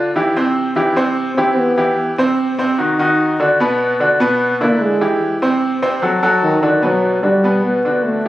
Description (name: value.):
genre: jazz.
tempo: 148 BPM.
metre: 4/4.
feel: straight.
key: G major.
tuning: A4 = 440 Hz.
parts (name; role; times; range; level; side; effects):
bright upright piano; accompaniment; 0.0-8.3 s; B2 to C5; -14 LUFS; equal; none.
breathy trombone; melody; 1.4-2.0, 4.6-8.3 s; Eb3 to C4; -16 LUFS; equal; none.
room: moderate large studio reverb, RT60 1.2 s.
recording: recorded on a phone in the room, studio reverb, compression.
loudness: -13 LUFS.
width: side -15 dB against mid.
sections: 0.0-6.8 A section; 6.8-8.3 B section.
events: trombone solo 0.0-6.8.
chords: 0.4 C; 2.8 Ebmmaj7; 3.6 Bm; 4.4 E7; 5.2 C; 6.0 D; 6.8 Gmaj7.